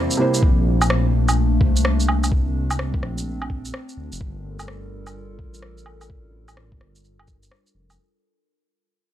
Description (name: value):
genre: future garage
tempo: 127 BPM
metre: 4/4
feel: swing 64% on 16ths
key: unclear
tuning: A4 = 440 Hz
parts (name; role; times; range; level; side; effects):
- warbly tape-like pad; sustained chords; 0.0-7.9 s; C3 to Bb4; -28 LUFS; left 1 dB; chorus, built-in reverb, sidechain pumping
- dark detuned saw bass; bass; 0.0-8.0 s; F1 to D2; -22 LUFS; equal; sidechain pumping
- electronic shaker, woodblock and rim click; drums; 0.1-8.0 s; none; -24 LUFS; right 1 dB; none
- electronic kick drum; drums; 0.4-7.4 s; none; -20 LUFS; equal; none
room: digital ambience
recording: dry, gritty hardware recording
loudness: -18 LUFS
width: side -12 dB against mid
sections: 0.0-8.0 A section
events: fade-out 0.0-8.0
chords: 0.4 Bbmaj7; 4.2 Gm7